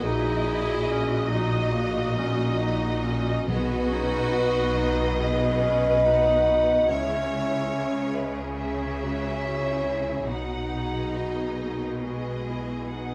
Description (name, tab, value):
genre	cinematic, emotional film score for orchestra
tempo	70 BPM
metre	4/4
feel	rubato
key	B major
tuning	A4 = 440 Hz
part	warm studio violin section	melody	0.0-13.1 s	C#5 to F#5	-38 LUFS	equal	none
part	mellow clarinet	second line	0.0-13.1 s	A#3 to F#4	-36 LUFS	equal	none
part	rich studio violin section	second line	0.0-13.1 s	D#4 to C#5	-38 LUFS	equal	none
part	rich studio viola section	accompaniment	0.0-13.1 s	F#3 to D#5	-37 LUFS	equal	none
part	dark French horn section	sustained chords	0.0-13.1 s	F#4 to E5	-29 LUFS	equal	none
part	rich studio cello section	bass	0.0-13.1 s	A#2 to C#3	-33 LUFS	equal	none
part	rich studio double bass section	bass	0.0-13.1 s	A#1 to C#2	-34 LUFS	equal	none
part	timpani	percussion	3.5-4.7 s	B2	-34 LUFS	equal	none
room	wet scoring stage reverb, RT60 1.6 s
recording	none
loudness	-25 LUFS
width	mono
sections	0.0-13.1 A section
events	none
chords	0.0 D#m/A#; 3.5 Badd9; 6.9 C#m; 10.3 G#m7/B